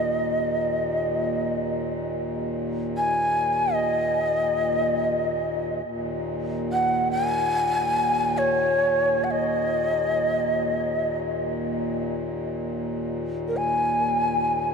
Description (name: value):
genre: world meditative, free-time meditation music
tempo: free time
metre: none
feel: none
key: unclear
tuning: A4 = 440 Hz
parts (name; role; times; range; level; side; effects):
- breathy mellow Native American-style cedar flute; melody; 0.0-14.7 s; Bb4 to Ab5; -23 LUFS; equal; ping-pong delay
- pedal harmonium; drone; 0.0-14.7 s; Eb2 to Bb2; -28 LUFS; equal; stereo widening
room: wet huge ambient reverb, RT60 7.3 s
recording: dark, warm production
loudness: -22 LUFS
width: side -5 dB against mid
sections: 0.0-5.9 A section; 5.9-14.7 A section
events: none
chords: none